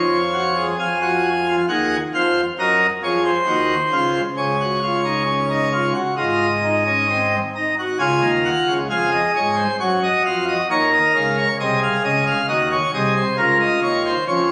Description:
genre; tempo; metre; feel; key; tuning
classical, baroque-style 3-part fugue for pipe organ; 67 BPM; 4/4; straight; Db major; A4 = 440 Hz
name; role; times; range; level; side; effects
pipe organ, plenum; solo; 0.0-14.5 s; Ab1 to Ab5; -19 LUFS; equal; none
room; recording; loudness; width
wet scoring stage reverb, RT60 1.7 s; recorded on a phone in the room, studio ambience, compression; -19 LUFS; mono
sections
0.8-8.0 A section; 8.0-14.5 B section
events
none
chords
0.0 Bbm (rootless); 0.8 Ebm69; 2.6 Ebm; 4.4 Absus4/Db; 6.2 Ab; 8.0 Db; 9.8 Gb; 11.6 Ab/C; 13.4 Db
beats
| 0.79 1.69 2.57 3.46 | 4.36 5.26 6.17 7.09 | 8.00 8.90 9.80 10.70 | 11.60 12.49 13.39 14.27

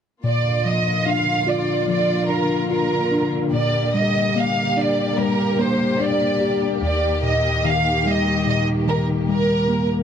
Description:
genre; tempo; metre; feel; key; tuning
pop ballad; 73 BPM; 4/4; straight; Bb major; A4 = 444 Hz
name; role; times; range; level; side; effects
mellow tine electric piano; accompaniment; 0.2-10.0 s; Eb2 to G4; -21 LUFS; left 1 dB; auto-pan
warm studio string section; sustained chords; 0.2-10.0 s; D3 to G4; -26 LUFS; left 2 dB; none
rich studio violin section; melody; 0.3-9.9 s; Bb4 to F5; -21 LUFS; right 2 dB; none
room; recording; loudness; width
light reverb, studio ambience; dark, warm production; -18 LUFS; side -8 dB against mid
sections
0.2-10.0 A section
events
none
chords
0.2 Bb; 3.5 Gm/Bb; 6.8 Eb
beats
| 0.24 1.07 1.89 2.71 | 3.53 4.35 5.18 6.00 | 6.82 7.64 8.46 9.29

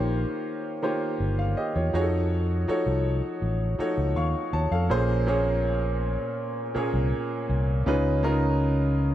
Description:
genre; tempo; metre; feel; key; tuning
R&B; 81 BPM; 4/4; straight; Bb minor; A4 = 440 Hz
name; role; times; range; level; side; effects
clear baby grand piano; accompaniment; 0.0-9.1 s; Bb2 to Db6; -26 LUFS; equal; none
fingered electric bass; bass; 0.0-9.1 s; G1 to F2; -25 LUFS; equal; none
room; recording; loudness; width
light reverb, small room ambience; none; -23 LUFS; side -12 dB against mid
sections
0.0-4.9 A section; 4.9-9.1 B section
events
none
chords
0.0 Eb13; 1.9 F7b9b13; 4.9 Bbm7; 7.9 Db7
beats
0.46 1.20 | 1.94 2.68 3.42 4.16 | 4.90 5.64 6.38 7.12 | 7.87 8.61

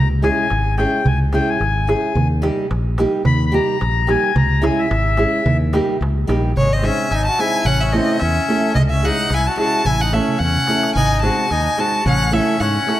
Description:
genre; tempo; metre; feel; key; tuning
balkan folk, Balkan wedding band; 109 BPM; 2/4; swing 54% on 16ths; G# phrygian dominant from 6.6 s; A4 = 440 Hz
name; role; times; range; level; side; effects
accordion; second line; 0.0-13.0 s; G#3 to Cb6; -22 LUFS; left 4 dB; none
modern bright fingered electric bass; bass; 0.0-12.8 s; Ab1 to G#2; -20 LUFS; equal; none
nylon-string guitar; accompaniment; 0.2-13.0 s; G3 to A4; -21 LUFS; right 2 dB; none
darbuka; percussion; 0.2-13.0 s; none; -23 LUFS; right 2 dB; none
clear violin; melody; 6.6-13.0 s; C#5 to A5; -20 LUFS; equal; slapback echo
room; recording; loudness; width
moderate concert hall reverb, RT60 2.4 s; none; -15 LUFS; side -14 dB against mid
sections
0.0-6.6 A section; 6.6-13.0 B section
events
accordion solo 0.0-6.6; drum fill 10.3-11.0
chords
0.0 Dbm; 2.2 Eb; 4.4 Dbm; 5.5 Eb; 6.6 G#; 7.7 A; 8.8 C#m; 9.9 A; 11.0 G#; 12.1 A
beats
0.51 | 1.06 1.61 | 2.17 2.72 | 3.27 3.82 | 4.37 4.92 | 5.46 6.01 | 6.56 7.11 | 7.66 8.21 | 8.76 9.31 | 9.86 10.41 | 10.96 11.51 | 12.05 12.60

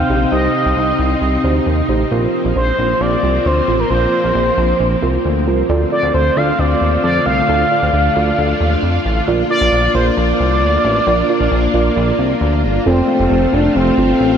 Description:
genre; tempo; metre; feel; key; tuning
synth-pop; 134 BPM; 4/4; straight; unclear; A4 = 439 Hz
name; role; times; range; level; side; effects
expressive synth lead; melody; 0.0-14.4 s; C4 to F5; -17 LUFS; equal; chorus, tape echo
string machine, full ensemble; sustained chords; 0.0-14.4 s; C3 to F4; -19 LUFS; left 1 dB; ensemble chorus
chorused synth bass; bass; 0.0-14.4 s; F1 to F2; -17 LUFS; equal; none
muted felt-like synth keys; accompaniment; 0.1-14.3 s; C4 to D5; -21 LUFS; right 4 dB; chorus
room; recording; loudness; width
wet huge ambient reverb, RT60 7.6 s; dreamy mix soaked in reverb; -12 LUFS; side -8 dB against mid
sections
0.0-5.7 A section; 5.7-12.9 B section; 12.9-14.4 C section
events
none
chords
0.0 Cm; 2.1 Bbsus2; 5.7 Dm7; 9.3 Bb; 12.9 F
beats
| 0.32 0.77 1.22 1.67 | 2.11 2.56 3.01 3.46 | 3.90 4.35 4.80 5.25 | 5.70 6.14 6.59 7.04 | 7.49 7.93 8.38 8.83 | 9.28 9.72 10.17 10.62 | 11.07 11.52 11.96 12.41 | 12.86 13.31 13.76 14.20

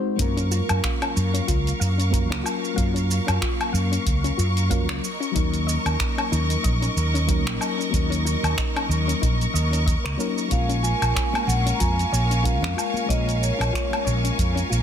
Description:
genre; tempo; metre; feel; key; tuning
sunset chillout; 93 BPM; 4/4; swing 57% on 16ths; unclear; A4 = 442 Hz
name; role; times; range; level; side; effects
mellow FM electric piano; accompaniment; 0.0-14.8 s; Gb3 to C5; -29 LUFS; moving between left 6 dB and right 4 dB; chorus, auto-pan, tape echo
rich studio string section; sustained chords; 0.2-14.8 s; Bb4 to Db6; -30 LUFS; left 1 dB; none
mellow fretless electric bass; bass; 0.2-14.8 s; Bb1 to Gb2; -23 LUFS; equal; none
deep house drum kit; drums; 0.2-14.8 s; finger snaps, hi-hat, shaker, woodblock; -28 LUFS; left 1 dB; overdrive, soft clipping on snare
electronic kick drum; drums; 0.2-14.5 s; none; -25 LUFS; equal; none
soft round pluck; arpeggios; 0.4-14.8 s; Db4 to F5; -34 LUFS; left 5 dB; chorus, tape echo
vibraphone with medium mallets; melody; 10.5-14.0 s; Db5 to Bb5; -28 LUFS; equal; tape echo
congas; percussion; 11.3-14.8 s; none; -36 LUFS; right 5 dB; none
room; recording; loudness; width
light reverb, digital ambience; dense, heavily limited modern master; -20 LUFS; side -9 dB against mid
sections
0.2-14.8 A section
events
break 0.0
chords
0.2 Gbmaj7; 5.0 Ebm7; 10.5 Bbm7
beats
| 0.19 0.83 1.48 2.12 | 2.77 3.42 4.06 4.71 | 5.35 6.00 6.64 7.29 | 7.93 8.58 9.22 9.87 | 10.51 11.16 11.80 12.45 | 13.09 13.74 14.38

